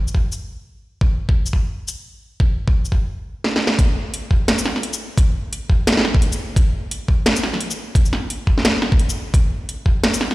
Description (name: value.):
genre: drum and bass.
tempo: 173 BPM.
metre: 4/4.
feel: swing 59% on 16ths, half-time.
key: none.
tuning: none.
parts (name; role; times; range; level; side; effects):
drum and bass drum kit; drums; 0.1-10.3 s; hi-hat, shaker, snare drum; -20 LUFS; equal; none.
electronic kick drum; drums; 0.1-9.9 s; none; -16 LUFS; equal; none.
room: light reverb.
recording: played on a big sound system in a bare room, stone room reverb.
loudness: -17 LUFS.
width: side -19 dB against mid.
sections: 0.0-3.8 A section; 3.8-10.3 B section.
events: stop 3.1-3.8; drum fill 3.4-3.8; drop 3.8-10.3.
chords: none.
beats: 0.32 0.67 | 1.01 1.36 1.71 2.06 | 2.40 2.75 3.10 3.44 | 3.79 4.13 4.48 4.83 | 5.18 5.52 5.87 6.22 | 6.56 6.91 7.26 7.60 | 7.95 8.30 8.64 8.99 | 9.34 9.69 10.03.